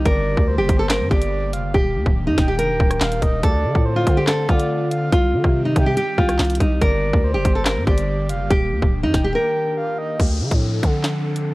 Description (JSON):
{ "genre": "hip hop, drill", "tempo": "142 BPM", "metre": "4/4", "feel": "half-time", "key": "D phrygian", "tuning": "A4 = 441 Hz", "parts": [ { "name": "nylon-string guitar", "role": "melody", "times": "0.0-10.2 s", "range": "Eb4 to Bb4", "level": "-22 LUFS", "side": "equal", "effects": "none" }, { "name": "airy breathy pad", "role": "sustained chords", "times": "0.0-11.5 s", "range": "D3 to A4", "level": "-29 LUFS", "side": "equal", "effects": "chorus" }, { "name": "growling 808-style bass", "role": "bass", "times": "0.0-11.5 s", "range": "D1 to Eb3", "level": "-22 LUFS", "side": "equal", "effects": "none" }, { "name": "breathy flute-like synth lead", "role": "second line", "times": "0.1-10.2 s", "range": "C5 to G5", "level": "-28 LUFS", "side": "right 2 dB", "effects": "chorus, tape echo" }, { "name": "drill drum kit", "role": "drums", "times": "0.1-11.5 s", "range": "handclaps, hi-hat, kick drum, rim click, snare drum", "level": "-19 LUFS", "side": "equal", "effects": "none" }, { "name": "downlifter", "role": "sound effects", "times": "10.2-11.5 s", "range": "none", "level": "-32 LUFS", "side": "left 2 dB", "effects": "none" } ], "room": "digital ambience", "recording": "worn, warbling old tape, cassette tape, warbly pitch drift", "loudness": "-16 LUFS", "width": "side -20 dB against mid", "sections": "0.0-10.2 A section; 10.2-11.5 B section", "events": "break 9.3-10.2", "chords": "0.1 Gm; 1.7 Ebmaj7; 3.4 Dm7; 5.1 Cm; 6.8 Gm; 8.5 Ebmaj7; 10.2 Dm7", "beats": "| 0.06 0.48 0.90 1.32 | 1.75 2.17 2.59 3.01 | 3.44 3.86 4.28 4.70 | 5.12 5.55 5.97 6.39 | 6.82 7.24 7.66 8.08 | 8.51 8.93 9.35 9.77 | 10.20 10.62 11.04 11.46" }